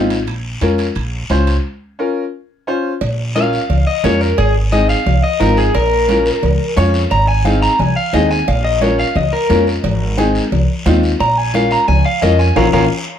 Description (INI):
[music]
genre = latin, cumbia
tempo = 176 BPM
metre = 4/4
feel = straight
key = Bb minor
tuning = A4 = 440 Hz
[part]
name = bright upright piano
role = accompaniment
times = 0.0-12.8 s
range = C4 to Db5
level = -18 LUFS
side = left 3 dB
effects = none
[part]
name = upright bass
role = bass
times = 0.0-12.9 s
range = Ab1 to F2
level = -16 LUFS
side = right 1 dB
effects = none
[part]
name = guiro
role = percussion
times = 0.1-12.8 s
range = none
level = -29 LUFS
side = left 2 dB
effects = none
[part]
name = timbales and cowbell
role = percussion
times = 0.1-12.8 s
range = none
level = -26 LUFS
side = right 4 dB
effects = none
[part]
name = congas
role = percussion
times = 0.3-12.8 s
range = none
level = -22 LUFS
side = left 3 dB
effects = none
[part]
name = electric guitar at the edge of break-up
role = melody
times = 3.4-12.8 s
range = Ab4 to Bb5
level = -17 LUFS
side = equal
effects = spring reverb
[sound]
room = light reverb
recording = dark, warm production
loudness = -12 LUFS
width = side -9 dB against mid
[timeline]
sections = 0.0-3.0 A section; 3.0-13.2 B section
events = break 1.6-3.0; clean electric guitar solo 3.0-13.2; band accent 12.6-13.2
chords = 0.3 Bbm; 4.4 Ab; 5.7 Bbm; 7.1 Ab; 8.5 Bbm; 9.8 Ab; 11.2 Bbm